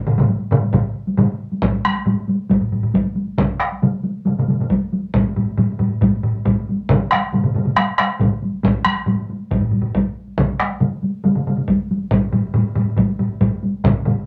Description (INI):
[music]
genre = japanese traditional, taiko drum ensemble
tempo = 137 BPM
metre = 4/4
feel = straight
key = none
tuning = none
[part]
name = solo taiko drums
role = percussion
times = 0.1-14.2 s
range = none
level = -22 LUFS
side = equal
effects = none
[part]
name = taiko ensemble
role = percussion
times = 0.1-14.2 s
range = none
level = -22 LUFS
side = equal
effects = none
[part]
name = taiko ensemble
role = percussion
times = 0.2-14.2 s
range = none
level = -22 LUFS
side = equal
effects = none
[part]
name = solo taiko drums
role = percussion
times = 0.7-13.9 s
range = none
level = -28 LUFS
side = equal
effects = none
[sound]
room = wet small room reverb, RT60 0.5 s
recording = none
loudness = -19 LUFS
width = mono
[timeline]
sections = 0.0-1.6 A section; 1.6-14.3 B section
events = none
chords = none